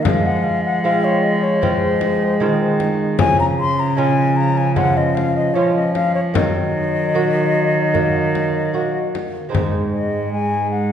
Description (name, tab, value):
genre	classical, renaissance-style consort dance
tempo	76 BPM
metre	4/4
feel	straight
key	Eb dorian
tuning	A4 = 436 Hz
part	wooden flute	melody	0.0-10.9 s	C5 to C6	-20 LUFS	left 3 dB	none
part	lute	accompaniment	0.0-10.9 s	Ab2 to Gb4	-24 LUFS	right 3 dB	none
part	warm cello	bass	0.0-10.9 s	Ab2 to F3	-21 LUFS	right 2 dB	none
part	clear trombone	accompaniment	0.1-10.9 s	F3 to Ab3	-23 LUFS	left 1 dB	none
part	frame drum	percussion	0.1-9.9 s	none	-23 LUFS	left 2 dB	none
room	wet recital hall reverb, RT60 1.4 s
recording	heard from further back in the room, nothing above 10.9 kHz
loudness	-15 LUFS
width	side -9 dB against mid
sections	0.0-9.5 A section; 9.5-10.9 B section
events	none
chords	0.1 Fm; 3.2 Db; 6.4 Ebm; 9.5 Ab